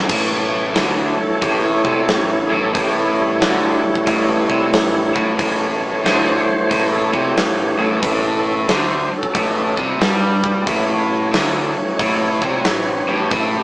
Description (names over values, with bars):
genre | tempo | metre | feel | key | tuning
blues rock power trio and southern rock | 91 BPM | 4/4 | swing 64% on 8ths | A major | A4 = 439 Hz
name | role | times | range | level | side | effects
tonewheel organ | sustained chords | 0.0-13.6 s | E3 to C#5 | -19 LUFS | equal | overdrive, fast rotary speaker
crunchy overdriven guitar | riff | 0.0-13.6 s | A2 to G3 | -20 LUFS | equal | none
growling picked electric bass | bass | 0.0-13.6 s | A1 to G2 | -24 LUFS | equal | overdrive
huge arena drum kit | drums | 0.1-13.5 s | crash cymbal, hi-hat, kick drum, snare drum | -20 LUFS | equal | none
room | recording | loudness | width
moderate studio ambience, RT60 0.5 s | band playing live in one room, small speaker sound | -15 LUFS | side -24 dB against mid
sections
0.1-13.6 A section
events
tonewheel organ solo 0.1-13.6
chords
0.1 A